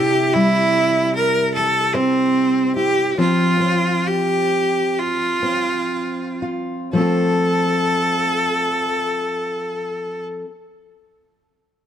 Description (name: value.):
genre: folk.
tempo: 56-78 BPM.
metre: 4/4.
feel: straight.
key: F major.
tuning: A4 = 440 Hz.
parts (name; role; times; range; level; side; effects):
bright cello; melody; 0.0-10.2 s; C4 to Bb4; -18 LUFS; right 1 dB; none.
fingerpicked steel-string acoustic guitar; accompaniment; 0.0-10.5 s; C3 to C5; -21 LUFS; left 1 dB; none.
room: moderate plate reverb, RT60 2.6 s.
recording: none.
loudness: -17 LUFS.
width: side -9 dB against mid.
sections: 0.0-6.9 A section; 6.9-11.2 B section.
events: slowing down 0.0-6.9.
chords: 0.0 C; 3.2 F5; 6.9 F.